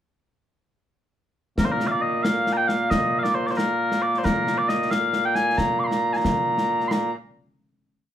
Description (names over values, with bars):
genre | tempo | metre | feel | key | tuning
scottish traditional, Scottish pipe music | 90 BPM (dotted quarters) | 6/8 | straight | Bb mixolydian | A4 = 440 Hz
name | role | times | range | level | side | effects
mellow small bagpipes | melody | 1.6-7.1 s | Bb2 to D6 | -21 LUFS | equal | none
concert snare drum and concert bass drum | drums | 1.6-7.0 s | none | -26 LUFS | left 1 dB | none
room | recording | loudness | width
wet studio reverb, RT60 0.6 s | band playing live in one room | -20 LUFS | side -10 dB against mid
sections
1.6-6.9 A section; 6.9-8.1 final note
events
none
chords
none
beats
| 1.58 2.25 | 2.91 3.58 | 4.25 4.91 | 5.58 6.25 | 6.91